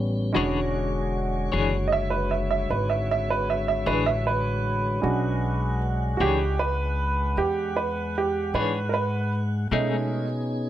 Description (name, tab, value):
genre	slow blues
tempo	51 BPM (dotted quarters)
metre	12/8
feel	straight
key	E mixolydian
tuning	A4 = 440 Hz
part	bright upright piano	accompaniment	0.0-10.2 s	G3 to E5	-26 LUFS	right 4 dB	none
part	mellow tonewheel organ	sustained chords	0.0-10.7 s	D3 to F#5	-31 LUFS	left 2 dB	slow rotary speaker
part	upright bass	bass	0.0-10.7 s	E1 to B2	-27 LUFS	equal	none
part	clean electric guitar	accompaniment	0.3-10.0 s	B2 to C#5	-26 LUFS	left 6 dB	tremolo
room	light reverb, small room ambience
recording	none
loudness	-23 LUFS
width	side -12 dB against mid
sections	0.0-10.7 A section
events	upright piano solo 0.0-10.7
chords	0.4 E13; 9.7 B13